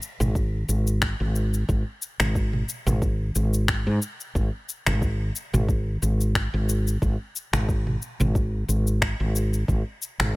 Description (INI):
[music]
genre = organic downtempo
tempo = 90 BPM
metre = 4/4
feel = swing 55% on 16ths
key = unclear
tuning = A4 = 440 Hz
[part]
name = afro-pop drum kit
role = drums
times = 0.0-10.3 s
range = finger snaps, shaker, toms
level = -28 LUFS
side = left 1 dB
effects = none
[part]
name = woody fretless electric bass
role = bass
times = 0.2-10.4 s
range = G#1 to G#2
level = -23 LUFS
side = equal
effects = none
[part]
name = electronic kick drum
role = drums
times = 0.4-9.8 s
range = none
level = -26 LUFS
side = equal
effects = overdrive
[sound]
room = digital ambience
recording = none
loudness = -22 LUFS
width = side -21 dB against mid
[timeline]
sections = 0.0-10.4 A section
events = none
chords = none